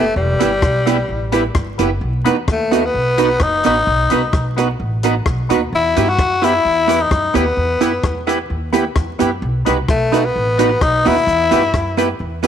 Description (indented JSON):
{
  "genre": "ska",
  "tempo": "130 BPM",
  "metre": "4/4",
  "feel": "straight",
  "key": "E harmonic minor",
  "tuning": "A4 = 440 Hz",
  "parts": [
    { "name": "raspy tenor saxophone", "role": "melody", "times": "0.0-12.0 s", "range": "G3 to F#4", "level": "-16 LUFS", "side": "left 3 dB", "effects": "none" },
    { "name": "archtop guitar, miked and amplified", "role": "accompaniment", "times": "0.0-12.5 s", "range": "B3 to B4", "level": "-19 LUFS", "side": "right 9 dB", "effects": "tape echo" },
    { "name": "overdriven tonewheel organ", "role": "stabs", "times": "0.0-12.5 s", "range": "B3 to B4", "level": "-25 LUFS", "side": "left 10 dB", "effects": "chorus vibrato, slow rotary speaker" },
    { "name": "upright bass", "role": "bass", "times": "0.0-12.5 s", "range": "E1 to G2", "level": "-22 LUFS", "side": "equal", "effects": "none" },
    { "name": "compact cocktail drum kit", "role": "drums", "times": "0.4-12.5 s", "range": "hi-hat, kick drum, rim click", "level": "-21 LUFS", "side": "left 1 dB", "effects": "none" }
  ],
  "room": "light reverb, studio reverb",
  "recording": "1960s-style stereo with parts hard left and right, vinyl crackle",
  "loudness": "-14 LUFS",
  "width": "side -9 dB against mid",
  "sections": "0.0-12.5 A section",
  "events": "none",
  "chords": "0.0 Em; 2.0 B; 5.7 Em; 9.4 B; 11.3 Em",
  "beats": "| 0.16 0.62 1.09 1.55 | 2.02 2.48 2.94 3.41 | 3.87 4.33 4.80 5.26 | 5.72 6.19 6.65 7.11 | 7.58 8.04 8.50 8.96 | 9.43 9.89 10.35 10.81 | 11.28 11.74 12.20"
}